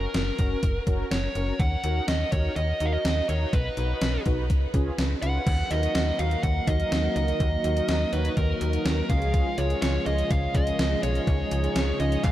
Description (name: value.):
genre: synth-pop.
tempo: 124 BPM.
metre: 4/4.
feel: straight.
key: unclear.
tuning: A4 = 440 Hz.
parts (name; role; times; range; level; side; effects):
dark smooth lead guitar; melody; 0.0-12.3 s; A#4 to F#5; -29 LUFS; right 1 dB; overdrive, analog delay.
mellow synth brass; accompaniment; 0.0-12.2 s; C#4 to C#5; -33 LUFS; left 1 dB; chorus.
slap-like FM bass; bass; 0.0-12.3 s; F#1 to D#2; -27 LUFS; equal; none.
gated 80s digital drum machine; drums; 0.1-12.3 s; crash cymbal, handclaps, hi-hat, kick drum, snare drum; -28 LUFS; equal; gated reverb, gated reverb snare, overdrive.
warm analog pad; sustained chords; 5.5-12.3 s; C#3 to A#4; -32 LUFS; right 1 dB; chorus.
room: moderate huge ambient reverb, RT60 6.9 s.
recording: dreamy mix soaked in reverb.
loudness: -23 LUFS.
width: side -13 dB against mid.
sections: 0.0-5.5 A section; 5.5-12.3 B section.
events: none.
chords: 0.0 F#; 1.6 D#m; 3.5 B; 4.5 C#; 5.5 D#m; 9.1 C#.